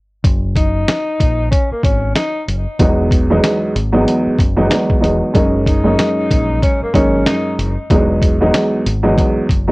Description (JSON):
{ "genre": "hip hop, boom-bap hip-hop", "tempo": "94 BPM", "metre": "4/4", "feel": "swing 60% on 16ths", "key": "F# mixolydian", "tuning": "A4 = 440 Hz", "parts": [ { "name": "deep dub fingered electric bass", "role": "bass", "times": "0.2-9.7 s", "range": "E1 to A#1", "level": "-18 LUFS", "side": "equal", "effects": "none" }, { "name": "dusty soul sampler-style drum kit", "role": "drums", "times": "0.2-9.7 s", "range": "hi-hat, kick drum, snare drum", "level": "-16 LUFS", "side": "equal", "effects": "cassette tape" }, { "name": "breathy tenor saxophone", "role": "melody", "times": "0.6-7.6 s", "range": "A#3 to D#4", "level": "-20 LUFS", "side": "left 1 dB", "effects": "high-pass filter, low-pass filter, cassette tape, analog delay" }, { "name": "dark upright piano", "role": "accompaniment", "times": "2.8-9.7 s", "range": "E2 to D#4", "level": "-14 LUFS", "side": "right 1 dB", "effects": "cassette tape, high-pass filter, low-pass filter" } ], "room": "light reverb", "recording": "home recording on cassette, faint mains hum", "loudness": "-12 LUFS", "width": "side -22 dB against mid", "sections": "0.0-9.7 A section", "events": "break 0.0", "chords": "0.2 F#69; 2.8 Emaj9; 5.3 F#69; 7.9 Emaj9" }